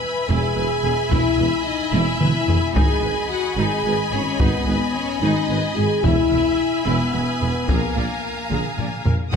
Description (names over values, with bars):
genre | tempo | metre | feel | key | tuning
cinematic, epic orchestral film score | 73 BPM (dotted quarters) | 6/8 | straight | unclear | A4 = 440 Hz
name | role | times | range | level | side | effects
warm symphonic violin section | melody | 0.0-9.4 s | A#4 to Eb6 | -31 LUFS | left 5 dB | none
rich symphonic violin section | second line | 0.0-9.4 s | Gb5 to B5 | -27 LUFS | left 3 dB | none
warm symphonic viola section | accompaniment | 0.0-9.4 s | D#4 to E#5 | -30 LUFS | right 2 dB | none
clear French horn section | sustained chords | 0.0-9.4 s | A#3 to B4 | -23 LUFS | left 4 dB | none
mellow tuba | bass | 0.3-9.2 s | E1 to A#1 | -29 LUFS | right 4 dB | none
warm symphonic cello section | bass | 0.3-9.4 s | E2 to Eb3 | -27 LUFS | right 4 dB | none
warm symphonic double bass section | bass | 0.3-9.4 s | E1 to Eb2 | -27 LUFS | right 3 dB | none
taiko ensemble | drums | 1.1-9.4 s | none | -23 LUFS | left 1 dB | none
room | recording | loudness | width
moderate concert hall reverb, RT60 2.1 s | none | -18 LUFS | side -6 dB against mid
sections
0.0-9.3 A section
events
drum fill 1.9-2.8, 8.5-9.3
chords
0.0 E; 2.8 G#m; 6.0 E; 7.7 A#7(no3)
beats
0.29 | 1.11 1.94 | 2.76 3.58 | 4.40 5.22 | 6.04 6.87 | 7.69 8.51 | 9.33